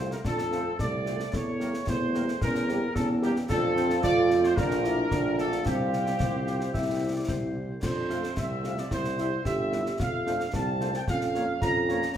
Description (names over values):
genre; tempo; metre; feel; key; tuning
military-style march for wind band; 111 BPM; 2/4; straight; F major; A4 = 440 Hz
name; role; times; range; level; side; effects
warm trumpet section; melody; 0.0-12.1 s; G4 to Bb5; -31 LUFS; right 1 dB; none
mellow euphonium; second line; 0.0-12.2 s; A3 to G4; -33 LUFS; right 4 dB; none
warm woodwind section; second line; 0.0-12.0 s; F4 to F5; -43 LUFS; left 4 dB; none
mellow French horn section; accompaniment; 0.0-12.0 s; G3 to G4; -34 LUFS; left 3 dB; none
warm tuba; bass; 0.0-12.0 s; G1 to F2; -29 LUFS; right 1 dB; none
concert snare drum, concert bass drum and clash cymbals; drums; 0.1-12.1 s; none; -33 LUFS; left 1 dB; none
room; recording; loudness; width
wet large studio reverb, RT60 1.4 s; heard from further back in the room; -25 LUFS; side -10 dB against mid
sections
0.0-12.2 A section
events
none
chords
0.0 F; 1.3 Edim7; 3.5 F; 4.6 Bbmaj7; 5.7 Csus4; 6.7 C; 7.8 F; 8.9 C; 10.0 F; 11.1 Bbm/F